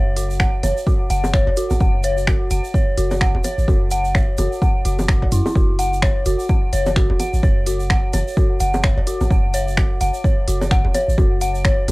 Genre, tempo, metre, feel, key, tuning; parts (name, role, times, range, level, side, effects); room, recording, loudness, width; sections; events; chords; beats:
minimal techno; 128 BPM; 4/4; swing 58% on 16ths; F# minor; A4 = 440 Hz
punchy sub bass; bass; 0.0-11.9 s; E1 to F#2; -21 LUFS; equal; sidechain pumping
dark detuned synth bell; riff; 0.2-11.9 s; E4 to F#5; -22 LUFS; left 1 dB; chorus, phaser, sidechain pumping, cassette tape, tape echo
techno drum kit; drums; 0.2-11.9 s; finger snaps, hi-hat; -23 LUFS; equal; overdrive, cassette tape
egg shaker; percussion; 0.2-11.9 s; -35 LUFS; right 7 dB
electronic kick drum; drums; 0.4-11.8 s; -18 LUFS; equal; cassette tape
bongos and cowbell; percussion; 0.6-11.9 s; -26 LUFS; equal; cassette tape
little or no reverb; home recording on cassette; -16 LUFS; side -22 dB against mid
0.0-11.9 A section
0.40 0.87 1.34 | 1.80 2.27 2.74 3.21 | 3.68 4.15 4.62 5.09 | 5.55 6.02 6.49 6.96 | 7.43 7.90 8.37 8.84 | 9.30 9.77 10.24 10.71 | 11.18 11.65